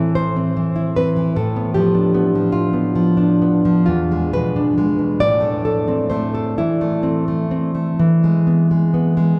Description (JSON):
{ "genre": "romantic piece for solo classical guitar", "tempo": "42-52 BPM (dotted quarters)", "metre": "6/8", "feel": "rubato", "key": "A minor", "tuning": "A4 = 440 Hz", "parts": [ { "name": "nylon-string guitar", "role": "solo", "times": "0.0-9.4 s", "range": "E2 to D5", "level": "-18 LUFS", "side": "equal", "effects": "none" } ], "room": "wet cathedral reverb, RT60 7.1 s", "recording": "recorded in a church or concert hall", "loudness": "-18 LUFS", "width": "mono", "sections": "0.0-9.4 A section", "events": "none", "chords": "0.0 Am; 1.4 Bdim/A; 3.9 E7; 5.2 Am; 6.6 Am/E; 8.0 E" }